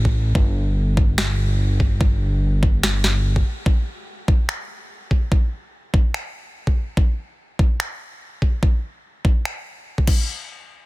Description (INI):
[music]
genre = future bass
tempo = 145 BPM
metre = 4/4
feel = swing 55% on 16ths, half-time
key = unclear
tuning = A4 = 440 Hz
[part]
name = fat analog bass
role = bass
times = 0.0-3.4 s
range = G1 to A1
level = -19 LUFS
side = equal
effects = sidechain pumping
[part]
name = electronic kick drum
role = drums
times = 0.1-10.2 s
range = none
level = -17 LUFS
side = equal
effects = overdrive
[part]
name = trap drum kit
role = drums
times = 1.2-10.2 s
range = crash cymbal, finger snaps, snare drum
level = -27 LUFS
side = equal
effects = soft clipping on snare
[sound]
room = little or no reverb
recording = dense, heavily limited modern master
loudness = -18 LUFS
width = side -20 dB against mid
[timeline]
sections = 0.0-10.3 A section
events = none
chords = none